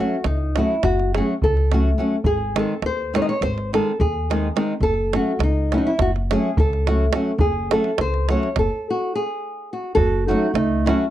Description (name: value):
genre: balkan folk, Balkan wedding band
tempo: 209 BPM (eighths)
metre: 9/8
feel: straight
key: F# dorian sharp4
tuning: A4 = 437 Hz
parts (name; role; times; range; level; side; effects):
- nylon-string guitar; melody; 0.0-10.9 s; D#4 to D#5; -23 LUFS; left 1 dB; slapback echo
- flamenco guitar; accompaniment; 0.0-11.0 s; D#3 to F#4; -22 LUFS; equal; none
- upright bass; bass; 0.2-10.9 s; F#1 to D#2; -23 LUFS; equal; none
- davul; percussion; 0.2-11.0 s; none; -23 LUFS; right 2 dB; none
- warm clarinet; second line; 9.9-11.0 s; A3 to F#4; -22 LUFS; right 5 dB; none
room: light reverb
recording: dry, close 1970s-style studio recording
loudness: -18 LUFS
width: side -13 dB against mid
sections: 0.0-10.0 A section; 10.0-11.1 A section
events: stop 8.7-10.0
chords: 0.0 F#m; 2.2 G#; 4.8 F#m